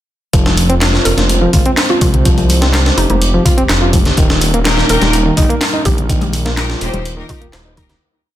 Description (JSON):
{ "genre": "breakbeat, breaks", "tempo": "125 BPM", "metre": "4/4", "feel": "straight", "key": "F minor", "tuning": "A4 = 440 Hz", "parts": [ { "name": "dark analog pad", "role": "sustained chords", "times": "0.3-8.0 s", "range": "G3 to C5", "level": "-21 LUFS", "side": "right 2 dB", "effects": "chorus, sidechain pumping" }, { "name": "overdriven reed electric piano", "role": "riff", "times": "0.3-7.8 s", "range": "Eb3 to F4", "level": "-18 LUFS", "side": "equal", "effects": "tube saturation, digital delay" }, { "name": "dark detuned saw bass", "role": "bass", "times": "0.3-7.9 s", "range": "Eb1 to C2", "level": "-15 LUFS", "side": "equal", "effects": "none" }, { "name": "breakbeat sampler-style drum kit", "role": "drums", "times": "0.3-8.0 s", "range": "hi-hat, kick drum, snare drum", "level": "-14 LUFS", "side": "equal", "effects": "none" }, { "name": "garage drum kit", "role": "drums", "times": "0.3-8.0 s", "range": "handclaps, hi-hat", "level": "-22 LUFS", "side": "equal", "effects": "none" }, { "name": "congas", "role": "percussion", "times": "0.5-8.0 s", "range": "none", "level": "-24 LUFS", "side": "left 4 dB", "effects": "none" }, { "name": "mallet-like synth pluck", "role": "melody", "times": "1.1-8.0 s", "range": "Eb4 to Bb4", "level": "-23 LUFS", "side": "equal", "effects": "chorus, old record sound, digital delay" }, { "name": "clear symphonic string section", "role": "stabs", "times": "4.7-7.9 s", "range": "Bb3 to C5", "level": "-20 LUFS", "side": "left 4 dB", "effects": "digital delay" } ], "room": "light reverb", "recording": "dense, heavily limited modern master", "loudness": "-10 LUFS", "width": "side -13 dB against mid", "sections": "0.3-8.0 drop", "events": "drop 0.3-8.0; fade-out 5.5-8.0", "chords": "0.3 Fm; 4.2 Eb" }